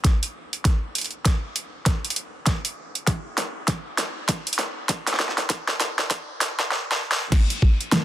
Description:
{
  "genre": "glitch hop",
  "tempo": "99 BPM",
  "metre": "4/4",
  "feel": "swing 61% on 16ths",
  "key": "none",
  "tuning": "none",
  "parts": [
    { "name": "electronic kick drum", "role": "drums", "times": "0.0-7.8 s", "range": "none", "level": "-20 LUFS", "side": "equal", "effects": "overdrive" },
    { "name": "pop drum kit", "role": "drums", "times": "0.0-8.0 s", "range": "crash cymbal, hi-hat, snare drum", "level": "-24 LUFS", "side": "equal", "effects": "overdrive, high-pass filter on hats, high-pass filter on snare, high-pass filter on cymbals, high-pass filter on room" }
  ],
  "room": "light reverb",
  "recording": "dense, heavily limited modern master, high-pass filter",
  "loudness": "-22 LUFS",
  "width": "side -13 dB against mid",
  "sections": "0.0-7.3 A section",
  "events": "build-up 0.0-7.3; drum fill 0.0-6.7, 6.7-7.3; filter sweep 0.0-7.3",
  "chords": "none",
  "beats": "| 0.05 0.65 1.26 1.87 | 2.47 3.08 3.68 4.29 | 4.90 5.50 6.11 6.71 | 7.32 7.93"
}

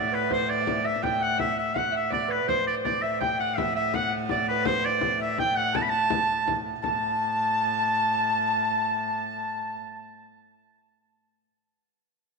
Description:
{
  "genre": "medieval dance",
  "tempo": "165 BPM",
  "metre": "3/4",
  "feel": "straight",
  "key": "A dorian",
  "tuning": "A4 = 439 Hz",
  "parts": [
    { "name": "bright shawm", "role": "melody", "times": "0.0-9.8 s", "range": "B4 to B5", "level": "-26 LUFS", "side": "right 2 dB", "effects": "tape echo" },
    { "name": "breathy mellow tenor recorder", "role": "second line", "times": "0.0-9.8 s", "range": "B4 to A5", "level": "-31 LUFS", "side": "left 6 dB", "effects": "none" },
    { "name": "concert harp", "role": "second line", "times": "0.0-10.5 s", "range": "B4 to A5", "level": "-31 LUFS", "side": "right 10 dB", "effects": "none" },
    { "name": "rich viola da gamba", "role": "drone", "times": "0.0-9.8 s", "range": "A2", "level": "-34 LUFS", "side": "left 1 dB", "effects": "stereo widening" },
    { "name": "frame drum", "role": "percussion", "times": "0.1-7.0 s", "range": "none", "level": "-33 LUFS", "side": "left 10 dB", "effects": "none" }
  ],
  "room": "wet echo chamber reverb, RT60 1.7 s, small room ambience",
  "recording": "1960s-style stereo with parts hard left and right",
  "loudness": "-23 LUFS",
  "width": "side -3 dB against mid",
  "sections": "0.0-6.8 A section; 6.8-9.0 B section",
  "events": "none",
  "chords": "none",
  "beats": "| 0.30 0.66 1.03 | 1.39 1.75 2.12 | 2.48 2.84 3.21 | 3.57 3.93 4.30 | 4.66 5.02 5.38 | 5.75 6.11 6.47 | 6.83 7.20 7.56 | 7.92 8.28 8.64"
}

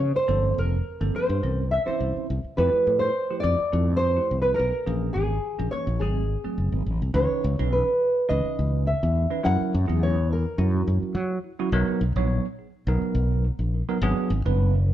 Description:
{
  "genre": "jazz",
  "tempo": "105 BPM",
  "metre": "4/4",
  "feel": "swing 53% on 16ths",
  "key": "C# dorian from 7.2 s",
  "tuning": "A4 = 440 Hz",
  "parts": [
    { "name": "nylon-string guitar", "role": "melody", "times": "0.0-11.1 s", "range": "G#4 to F#5", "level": "-26 LUFS", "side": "equal", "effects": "none" },
    { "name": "vintage hollow-body jazz guitar", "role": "second line", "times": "0.0-6.8 s", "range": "G#4 to E5", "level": "-31 LUFS", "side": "right 1 dB", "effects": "none" },
    { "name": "bell-like tine electric piano", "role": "accompaniment", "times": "0.0-14.9 s", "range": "E3 to C#5", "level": "-29 LUFS", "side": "right 3 dB", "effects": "medium stereo tremolo" },
    { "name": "fretless electric bass", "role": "bass", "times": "0.0-14.9 s", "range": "F1 to F#3", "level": "-24 LUFS", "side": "equal", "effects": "none" }
  ],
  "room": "moderate stone room reverb, RT60 1.0 s",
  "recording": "band playing live in one room, lossy compression artefacts",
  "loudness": "-22 LUFS",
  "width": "side -12 dB against mid",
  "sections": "0.0-7.2 A section; 7.2-14.9 B section",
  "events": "none",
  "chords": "0.3 Gm11; 1.4 C7b9; 2.6 Fmaj9; 4.9 A#m7b5; 6.0 G#7b9; 7.2 C#m9; 9.4 F#7; 11.7 Bmaj7; 14.0 G#m7b5",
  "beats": "| 0.28 0.85 1.43 2.00 | 2.57 3.15 3.72 4.29 | 4.87 5.44 6.01 6.58 | 7.16 7.73 8.30 8.87 | 9.44 10.01 10.59 11.16 | 11.73 12.30 12.87 13.44 | 14.01 14.58"
}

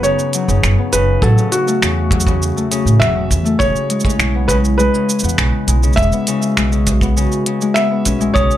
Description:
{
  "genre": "folktronica",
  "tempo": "101 BPM",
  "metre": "4/4",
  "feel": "straight",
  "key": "E major",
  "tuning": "A4 = 440 Hz",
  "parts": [
    { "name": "felt-muted upright piano", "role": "melody", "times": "0.0-8.6 s", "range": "F#4 to E5", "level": "-19 LUFS", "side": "equal", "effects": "digital delay, plate reverb" },
    { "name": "warbly tape-like pad", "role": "sustained chords", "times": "0.0-8.6 s", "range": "C#3 to F#4", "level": "-24 LUFS", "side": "equal", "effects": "chorus, built-in reverb, plate reverb" },
    { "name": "Celtic harp", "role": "arpeggios", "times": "0.0-8.6 s", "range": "C#3 to C#4", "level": "-19 LUFS", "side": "left 3 dB", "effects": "low-pass filter, digital delay, plate reverb" },
    { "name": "upright bass", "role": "bass", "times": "0.0-8.5 s", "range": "E1 to A2", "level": "-16 LUFS", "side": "right 1 dB", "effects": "none" },
    { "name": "minimal click drum kit", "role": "drums", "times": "0.0-8.6 s", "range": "finger snaps, hi-hat, shaker", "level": "-20 LUFS", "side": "right 1 dB", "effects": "none" },
    { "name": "kick drum", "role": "drums", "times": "1.2-8.5 s", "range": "none", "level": "-18 LUFS", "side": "right 1 dB", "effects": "none" },
    { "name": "glockenspiel with soft plastic mallets", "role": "second line", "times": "8.3-8.5 s", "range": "D#6", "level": "-20 LUFS", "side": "right 1 dB", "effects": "plate reverb" }
  ],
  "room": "moderate studio reverb, RT60 0.6 s",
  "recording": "none",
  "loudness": "-12 LUFS",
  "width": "side -12 dB against mid",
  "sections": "0.0-8.6 A section",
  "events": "none",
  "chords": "0.0 Badd9; 1.2 A6; 3.6 E6",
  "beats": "0.04 0.63 | 1.23 1.82 2.42 3.01 | 3.60 4.20 4.79 5.38 | 5.98 6.57 7.17 7.76 | 8.36"
}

